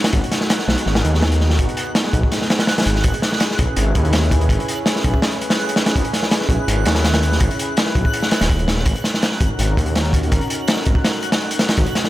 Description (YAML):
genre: drum and bass, jungle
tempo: 165 BPM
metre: 4/4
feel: straight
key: unclear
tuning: A4 = 440 Hz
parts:
  - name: lush unison pad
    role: sustained chords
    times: 0.0-12.1 s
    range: A#3 to B4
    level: -25 LUFS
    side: equal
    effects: chorus
  - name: crunchy breakbeat drum kit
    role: drums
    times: 0.0-12.1 s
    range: hi-hat, kick drum, snare drum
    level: -18 LUFS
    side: equal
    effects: none
  - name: backwards swelling texture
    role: texture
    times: 0.0-12.1 s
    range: F#6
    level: -29 LUFS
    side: right 2 dB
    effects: built-in reverb
  - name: detuned saw bass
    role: bass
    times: 0.1-11.9 s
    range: D#1 to D#2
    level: -18 LUFS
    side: equal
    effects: none
room: light reverb, small room ambience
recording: none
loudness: -15 LUFS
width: side -15 dB against mid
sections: 0.0-12.1 A section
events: none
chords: 0.1 G#m7; 3.0 E6/G#; 6.0 C#m7/G#; 8.9 D#m7/G#